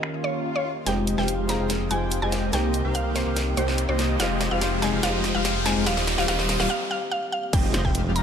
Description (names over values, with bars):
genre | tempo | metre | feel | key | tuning
future bass | 144 BPM | 4/4 | half-time | F minor | A4 = 440 Hz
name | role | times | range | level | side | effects
mallet-like synth pluck | melody | 0.0-8.2 s | C5 to Bb5 | -29 LUFS | right 1 dB | chorus, sidechain pumping, ping-pong delay
felt-muted upright piano | accompaniment | 0.0-7.6 s | Eb3 to Ab4 | -31 LUFS | left 2 dB | sidechain pumping, ping-pong delay
airy breathy pad | sustained chords | 0.0-8.2 s | Eb3 to G5 | -36 LUFS | right 2 dB | chorus, phaser, sidechain pumping
big-room dance drum kit | drums | 0.0-8.2 s | crash cymbal, finger snaps, hi-hat, snare drum | -30 LUFS | equal | high-pass filter on snare, low-pass filter on snare, high-pass filter on hats, low-pass filter on hats, high-pass filter on cymbals, low-pass filter on cymbals
swell, riser and impact | sound effects | 0.1-8.2 s | none | -32 LUFS | equal | none
big bright polysynth | riff | 0.9-8.2 s | G3 to G5 | -27 LUFS | left 1 dB | chorus, sidechain pumping
wide detuned saw bass | bass | 0.9-8.2 s | Eb1 to C2 | -27 LUFS | equal | chorus, sidechain pumping
electronic kick drum | drums | 7.5-7.9 s | none | -24 LUFS | equal | none
room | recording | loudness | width
light reverb, digital ambience | lossy compression artefacts | -21 LUFS | side -8 dB against mid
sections
0.9-7.5 A section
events
swell 0.1-0.9; build-up 0.9-7.5; drum fill 0.9-6.7; riser 0.9-6.7; filter sweep on analog polysynth 0.9-7.5; break 6.7-7.5; impact 7.5-8.2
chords
0.0 Eb7; 0.9 Fm9; 2.5 Cm7; 4.2 Fm9; 5.9 Eb; 7.5 Fm9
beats
0.03 0.45 | 0.86 1.28 1.70 2.12 | 2.53 2.95 3.37 3.78 | 4.20 4.62 5.03 5.45 | 5.87 6.28 6.70 7.12 | 7.53 7.95